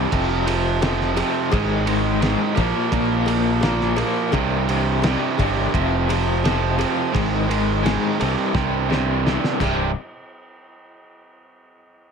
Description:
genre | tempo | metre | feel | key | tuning
classic rock | 86 BPM | 4/4 | straight | C minor | A4 = 440 Hz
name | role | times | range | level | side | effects
cranked stack guitar | riff | 0.0-9.9 s | C2 to D4 | -24 LUFS | left 16 dB | overdrive, tremolo
overdriven electric guitar | riff | 0.0-9.9 s | C2 to Bb3 | -22 LUFS | right 15 dB | none
growling fingered electric bass | bass | 0.0-9.9 s | C1 to C2 | -24 LUFS | left 1 dB | overdrive
cloth-damped thuddy drum kit | drums | 0.1-9.8 s | crash cymbal, kick drum, ride cymbal, snare drum | -26 LUFS | equal | none
cowbell | percussion | 0.5-9.9 s | none | -32 LUFS | left 6 dB | none
room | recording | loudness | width
light reverb | none | -18 LUFS | side -6 dB against mid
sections
0.0-10.0 A section; 10.0-12.1 B section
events
drum fill 8.6-10.0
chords
0.1 F5; 1.5 Ab5; 2.6 Bb5; 4.3 C5; 5.7 F5; 7.1 Ab5; 8.2 C5; 9.6 Csus2; 10.0 N.C.

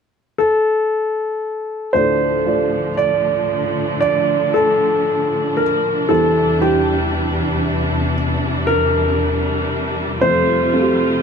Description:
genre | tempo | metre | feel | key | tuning
pop | 58 BPM | 4/4 | straight | D minor | A4 = 435 Hz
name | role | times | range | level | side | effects
clear grand piano | melody | 0.4-11.2 s | G4 to D5 | -17 LUFS | left 1 dB | none
dark upright piano | accompaniment | 1.9-11.2 s | D2 to D5 | -20 LUFS | right 3 dB | none
warm studio string section | sustained chords | 1.9-11.2 s | E2 to F4 | -20 LUFS | equal | none
room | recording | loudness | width
moderate stone room reverb, RT60 1.1 s | band playing live in one room | -15 LUFS | side -6 dB against mid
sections
0.0-1.9 A section; 1.9-11.2 B section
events
none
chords
0.0 N.C.; 1.9 Dm; 6.1 Cadd9/E; 10.2 F

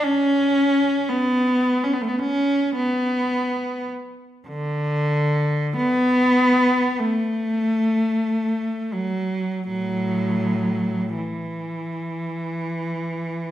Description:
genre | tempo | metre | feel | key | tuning
classical, free, expressive piece for unaccompanied cello | 40-58 BPM | 4/4 | rubato | A major | A4 = 445 Hz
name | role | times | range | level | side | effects
rich cello | solo | 0.0-13.5 s | A2 to C#4 | -20 LUFS | equal | none
room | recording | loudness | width
wet recital hall reverb, RT60 1.5 s | recorded in a church or concert hall | -20 LUFS | side -12 dB against mid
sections
0.0-13.5 A section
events
none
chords
none

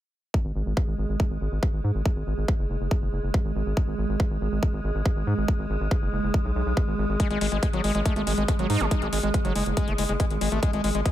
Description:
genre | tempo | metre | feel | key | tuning
psychedelic trance | 140 BPM | 4/4 | straight | unclear | A4 = 438 Hz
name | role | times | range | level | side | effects
evolving wavetable pad | sustained chords | 0.5-11.1 s | G#3 | -30 LUFS | right 2 dB | chorus, built-in reverb, vintage 12-bit sampler grit, sidechain pumping
electronic kick drum | drums | 0.3-11.1 s | none | -24 LUFS | equal | none
round analog bass | bass | 0.4-11.0 s | F#1 to G#2 | -27 LUFS | equal | none
screaming distorted acid line | riff | 7.2-11.1 s | F#3 to D#4 | -28 LUFS | moving between left 7 dB and right 4 dB | distortion, chorus, auto-pan, sidechain pumping, ping-pong delay
electronic hi-hat | drums | 7.2-11.1 s | none | -35 LUFS | left 5 dB | low-pass filter on hats
room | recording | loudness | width
little or no reverb | none | -23 LUFS | side -13 dB against mid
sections
0.3-11.1 A section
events
filter sweep on ambient pad 0.3-11.1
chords
0.3 G#5

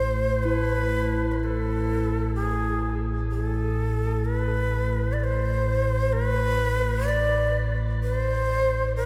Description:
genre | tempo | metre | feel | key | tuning
dark ambient drone | 64 BPM | 4/4 | straight | A harmonic minor | A4 = 440 Hz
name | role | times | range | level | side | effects
breathy bright shakuhachi | melody | 0.0-9.1 s | G#4 to D5 | -29 LUFS | equal | shimmer reverb, tape echo
deep rumbling drone | drone | 0.0-9.1 s | A1 to A2 | -28 LUFS | equal | built-in reverb, subtle chorus
bronze singing bowl | texture | 0.0-9.1 s | E4 | -36 LUFS | equal | none
room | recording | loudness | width
wet cathedral reverb, RT60 5.1 s | in a vast, echoing space | -25 LUFS | mono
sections
0.0-9.1 A section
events
none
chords
0.0 A5

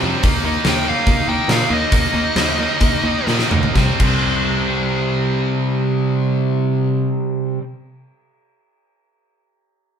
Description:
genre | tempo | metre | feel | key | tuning
hard rock | 122-145 BPM | 4/4 | straight | C minor | A4 = 440 Hz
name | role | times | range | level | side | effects
cranked stack guitar | riff | 0.0-7.6 s | C3 to Eb4 | -20 LUFS | right 5 dB | overdrive
distorted electric guitar | riff | 0.0-7.6 s | C3 to Eb4 | -23 LUFS | left 7 dB | overdrive
picked electric bass | bass | 0.0-7.6 s | C2 to Bb2 | -23 LUFS | equal | none
big rock drum kit | drums | 0.2-4.1 s | crash cymbal, hi-hat, kick drum, snare drum, toms | -19 LUFS | equal | none
dark smooth lead guitar | melody | 0.7-3.3 s | Eb5 to G5 | -22 LUFS | equal | overdrive
room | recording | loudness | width
moderate studio reverb, RT60 0.9 s | band playing live in one room | -15 LUFS | side -8 dB against mid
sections
0.0-3.8 A section; 3.8-7.7 B section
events
lead electric guitar solo 0.0-3.8; slowing down 0.2-3.8; drum fill 3.3-3.8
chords
0.2 Eb5; 3.8 C5

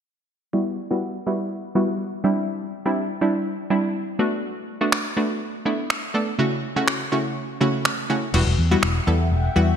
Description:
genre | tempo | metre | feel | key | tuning
dance-pop | 123 BPM | 4/4 | straight | E minor | A4 = 440 Hz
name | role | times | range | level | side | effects
analog pluck | accompaniment | 0.5-9.7 s | C#3 to A4 | -22 LUFS | equal | chorus, low-pass filter
gated 80s digital drum machine | drums | 4.9-8.9 s | crash cymbal, finger snaps | -25 LUFS | equal | gated reverb
shimmering ambient pad | sustained chords | 8.9-9.8 s | E5 to G5 | -30 LUFS | left 2 dB | chorus, built-in reverb
vintage muted fingered electric bass | bass | 8.3-9.7 s | E1 to E2 | -19 LUFS | left 1 dB | none
room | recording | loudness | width
moderate lush hall reverb, RT60 2.3 s | bright 1980s-style digital production | -21 LUFS | side -8 dB against mid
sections
0.5-8.3 A section; 8.3-9.8 B section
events
filter sweep on synth pluck 0.5-8.3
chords
0.5 Emadd9; 2.2 Cadd9; 4.2 Bm7; 6.4 A6/C#; 8.3 Emadd9

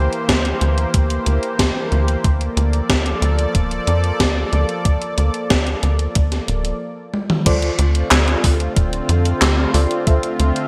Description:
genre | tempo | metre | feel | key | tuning
synthwave | 92 BPM | 4/4 | straight | D minor | A4 = 438 Hz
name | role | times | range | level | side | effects
lush unison pad | sustained chords | 0.0-10.7 s | D3 to D5 | -26 LUFS | equal | chorus, sidechain pumping
tight sequencer bass | bass | 0.0-10.5 s | D1 to F2 | -20 LUFS | equal | tube saturation, sidechain pumping
gated 80s digital drum machine | drums | 0.1-10.7 s | crash cymbal, handclaps, hi-hat, snare drum, toms | -22 LUFS | equal | gated reverb, gated reverb snare
electronic kick drum | drums | 0.3-10.2 s | none | -20 LUFS | equal | none
FM electric piano with soft pad layer | stabs | 7.5-10.7 s | F4 to E5 | -26 LUFS | equal | chorus, tremolo, digital delay
room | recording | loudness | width
light reverb | bright 1980s-style digital production | -18 LUFS | mono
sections
0.0-7.5 A section; 7.5-10.7 B section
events
drum fill 7.1-7.5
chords
0.0 C7/D; 2.2 Bbmaj7/D; 7.5 Dm7

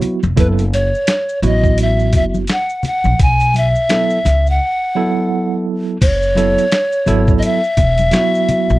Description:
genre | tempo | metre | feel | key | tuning
hip hop, jazz-hop | 85 BPM | 4/4 | swing 60% on 16ths | F# dorian | A4 = 440 Hz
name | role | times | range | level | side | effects
tine electric piano | accompaniment | 0.0-8.8 s | F#3 to A4 | -17 LUFS | right 3 dB | fast stereo tremolo
boom bap sampler-style drum kit | drums | 0.0-8.7 s | crash cymbal, hi-hat, kick drum, snare drum | -16 LUFS | equal | none
congas and maracas | percussion | 0.0-8.8 s | none | -24 LUFS | left 3 dB | none
upright bass | bass | 0.2-8.8 s | E1 to C#2 | -16 LUFS | equal | none
mellow hollow polished pan flute | melody | 0.4-8.8 s | B4 to G#5 | -16 LUFS | equal | slapback echo
room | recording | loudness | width
little or no reverb | dry, close 1970s-style studio recording | -12 LUFS | side -17 dB against mid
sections
0.0-6.0 A section; 6.0-8.8 B section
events
break 4.6-6.0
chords
0.4 F#m7; 3.2 B9sus4; 4.6 F#m7

